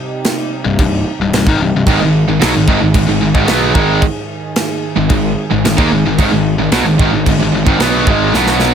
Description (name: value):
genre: heavy metal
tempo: 111 BPM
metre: 4/4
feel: straight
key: unclear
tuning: A4 = 439 Hz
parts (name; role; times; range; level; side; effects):
- chorused pulse-width pad; sustained chords; 0.0-8.7 s; Ab2 to Ab4; -24 LUFS; right 4 dB; none
- modern studio drum kit; drums; 0.2-8.7 s; crash cymbal, kick drum, snare drum; -17 LUFS; right 1 dB; none
- high-gain distorted guitar; riff; 0.6-8.7 s; C2 to B3; -14 LUFS; left 6 dB; distortion
- fuzz picked electric bass; bass; 0.7-8.7 s; C1 to Eb2; -18 LUFS; right 1 dB; overdrive
- high-gain distorted guitar; riff; 1.9-8.7 s; Ab2 to B3; -16 LUFS; right 15 dB; distortion
room: light reverb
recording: none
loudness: -10 LUFS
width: side -8 dB against mid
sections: 0.0-8.7 A section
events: drum fill 8.3-8.7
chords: 0.0 Cm; 1.9 Ab5